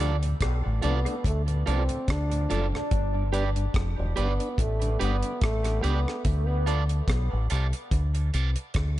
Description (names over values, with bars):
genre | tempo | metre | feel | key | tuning
dub reggae | 72 BPM | 4/4 | swing 56% on 16ths | D dorian | A4 = 438 Hz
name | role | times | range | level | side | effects
electric guitar at the edge of break-up | accompaniment | 0.0-8.5 s | F4 to D5 | -34 LUFS | right 6 dB | high-pass filter, dub echo
mellow tonewheel organ | accompaniment | 0.0-8.7 s | D2 to D4 | -37 LUFS | left 3 dB | slow rotary speaker, high-pass filter
deep dub fingered electric bass | bass | 0.0-9.0 s | E1 to D2 | -26 LUFS | equal | none
deep reggae drum kit | drums | 0.0-9.0 s | hi-hat, kick drum, rim click | -29 LUFS | equal | none
breathy trombone | melody | 0.9-6.3 s | A3 to D4 | -33 LUFS | equal | dub echo
room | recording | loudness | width
little or no reverb | echo-heavy mix, nothing above 10.6 kHz | -24 LUFS | side -15 dB against mid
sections
0.0-9.0 A section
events
filter sweep 2.9-9.0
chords
0.0 Dm; 2.9 G; 6.2 Dm